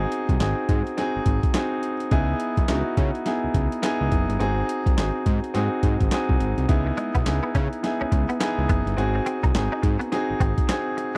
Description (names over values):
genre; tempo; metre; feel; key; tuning
R&B, new jack swing; 105 BPM; 4/4; swing 61% on 16ths; C# minor; A4 = 440 Hz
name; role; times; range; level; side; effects
clear concert grand piano; accompaniment; 0.0-11.2 s; B3 to G#4; -28 LUFS; equal; none
fat analog bass; bass; 0.0-10.5 s; F#1 to C#3; -28 LUFS; equal; none
boom bap sampler-style drum kit; drums; 0.1-11.2 s; handclaps, hi-hat, kick drum, snare drum; -26 LUFS; equal; none
direct-recorded clean electric guitar; riff; 6.9-11.2 s; G#3 to D#4; -33 LUFS; equal; ensemble chorus
room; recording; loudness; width
little or no reverb; dry, close 1970s-style studio recording; -23 LUFS; mono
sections
0.0-11.2 A section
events
none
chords
0.0 G#7; 2.1 C#m7; 4.4 G#7; 6.7 C#m7; 9.0 G#7